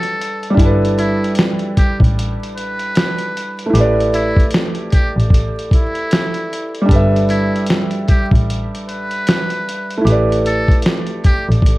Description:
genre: lo-fi hip hop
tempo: 76 BPM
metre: 4/4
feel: swing 62% on 16ths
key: G major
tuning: A4 = 442 Hz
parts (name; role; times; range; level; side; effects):
- trumpet with metal mute; melody; 0.0-11.5 s; E4 to B4; -24 LUFS; equal; none
- felt-muted upright piano; accompaniment; 0.0-11.8 s; G3 to F#5; -19 LUFS; right 1 dB; plate reverb
- lo-fi sampler-style drum kit; drums; 0.0-11.8 s; hi-hat, kick drum, snare drum; -15 LUFS; equal; none
- warm double bass; bass; 0.6-11.6 s; G1 to A1; -17 LUFS; equal; none
room: light reverb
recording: vinyl crackle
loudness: -13 LUFS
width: side -19 dB against mid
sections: 0.6-11.8 A section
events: none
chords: 0.0 Gmaj7; 0.6 G69; 3.7 A9sus4; 6.9 G69; 10.0 A9sus4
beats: | 0.57 1.36 2.15 2.94 | 3.73 4.52 5.31 6.10 | 6.89 7.68 8.47 9.26 | 10.05 10.84 11.63

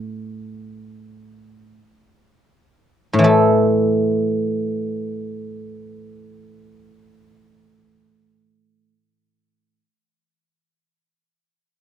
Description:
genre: chinese traditional, Chinese solo plucked strings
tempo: free time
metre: none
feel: none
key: unclear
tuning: A4 = 438 Hz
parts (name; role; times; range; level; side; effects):
- guzheng; solo; 0.0-9.8 s; A2 to A4; -17 LUFS; equal; none
room: light reverb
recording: home recording on cassette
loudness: -16 LUFS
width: side -10 dB against mid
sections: 0.0-3.3 A section; 3.3-9.1 B section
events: slowing down 0.0-3.3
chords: none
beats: free time

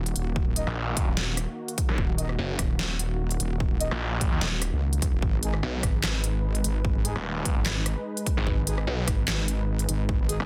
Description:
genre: heavy wobble dubstep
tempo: 148 BPM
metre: 4/4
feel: swing 54% on 16ths, half-time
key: Eb minor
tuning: A4 = 440 Hz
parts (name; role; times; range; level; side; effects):
- supersaw pad; sustained chords; 0.0-10.5 s; Eb3 to Cb5; -40 LUFS; equal; sidechain pumping, low-pass filter
- wobble bass; bass; 0.0-10.4 s; Eb1 to Db2; -30 LUFS; equal; chorus, overdrive
- dubstep drum kit; drums; 0.1-10.5 s; handclaps, hi-hat, rim click, snare drum; -32 LUFS; equal; soft clipping on snare, studio reverb
- electronic kick drum; drums; 0.4-10.2 s; none; -29 LUFS; equal; studio reverb
- mellow brass ensemble; stabs; 0.6-10.4 s; Ab3 to Eb5; -38 LUFS; equal; digital delay
- snarling distorted saw bass; bass; 0.7-10.5 s; Eb1 to Eb2; -31 LUFS; equal; distortion, overdrive
room: little or no reverb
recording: dense, heavily limited modern master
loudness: -27 LUFS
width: mono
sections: 0.0-10.5 A section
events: none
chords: 0.0 Ebm; 5.2 Abm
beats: | 0.36 0.77 1.17 1.58 | 1.98 2.39 2.79 3.20 | 3.60 4.01 4.41 4.82 | 5.22 5.63 6.04 6.44 | 6.85 7.25 7.66 8.06 | 8.47 8.87 9.28 9.68 | 10.09

